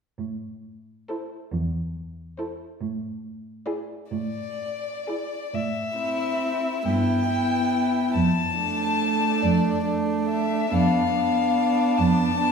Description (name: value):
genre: classical, slow romantic movement for string quartet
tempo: 41-48 BPM (dotted quarters)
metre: 6/8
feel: rubato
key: A minor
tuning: A4 = 441 Hz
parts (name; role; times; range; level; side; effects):
- warm cello; bass; 0.2-12.5 s; E2 to A2; -27 LUFS; right 2 dB; none
- warm violin; melody; 1.1-12.5 s; C5 to A5; -27 LUFS; left 5 dB; none
- rich violin; second line; 1.1-12.5 s; D4 to A4; -29 LUFS; right 1 dB; none
- warm viola; accompaniment; 1.1-12.5 s; A3 to E4; -26 LUFS; right 1 dB; none
room: wet stone room reverb, RT60 1.4 s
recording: heard from further back in the room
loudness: -22 LUFS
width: side -6 dB against mid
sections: 0.2-5.5 A section; 5.5-12.5 B section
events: none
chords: 0.2 Am; 2.8 E7/A; 5.5 Am; 6.9 Em/G; 8.2 Dm/F; 10.7 Bm7b5/F